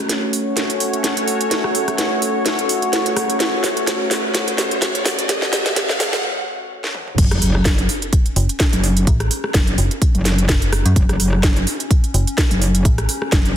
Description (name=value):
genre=bass house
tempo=127 BPM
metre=4/4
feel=swing 55% on 16ths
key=F# minor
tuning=A4 = 439 Hz
part: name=sweeping resonant pad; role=sustained chords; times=0.0-7.1 s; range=A3 to C#5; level=-23 LUFS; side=equal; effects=chorus, sidechain pumping
part: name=riser and sub drop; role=sound effects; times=0.0-9.1 s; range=none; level=-29 LUFS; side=equal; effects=none
part: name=warbly tape-like pad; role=texture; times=0.0-13.6 s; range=C#4 to F#5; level=-27 LUFS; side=equal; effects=chorus, built-in reverb, sidechain pumping
part: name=garage drum kit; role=drums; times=0.1-13.5 s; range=crash cymbal, hi-hat, rim click, snare drum, toms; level=-20 LUFS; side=equal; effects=none
part: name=metallic wobble bass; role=bass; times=7.2-13.5 s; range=F#1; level=-17 LUFS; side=equal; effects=distortion, chorus, overdrive, sidechain pumping
part: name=electronic kick drum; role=drums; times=7.2-13.4 s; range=none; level=-16 LUFS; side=equal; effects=none
part: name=metallic FM bass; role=bass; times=8.4-13.1 s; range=F#1 to F#2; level=-17 LUFS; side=equal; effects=sidechain pumping
room=light reverb, digital ambience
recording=dense, heavily limited modern master, high-pass filter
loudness=-15 LUFS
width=side -10 dB against mid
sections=0.0-7.2 A section; 7.2-13.6 B section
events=build-up 0.0-7.2; drum fill 0.0-6.2, 6.8-7.2; break 6.2-7.2; drop 7.2-13.6; impact 7.2-9.1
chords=0.0 F#m; 7.2 F#5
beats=0.10 0.57 1.04 | 1.51 1.99 2.46 2.93 | 3.40 3.88 4.35 4.82 | 5.29 5.76 6.24 6.71 | 7.18 7.65 8.13 8.60 | 9.07 9.54 10.02 10.49 | 10.96 11.43 11.91 12.38 | 12.85 13.32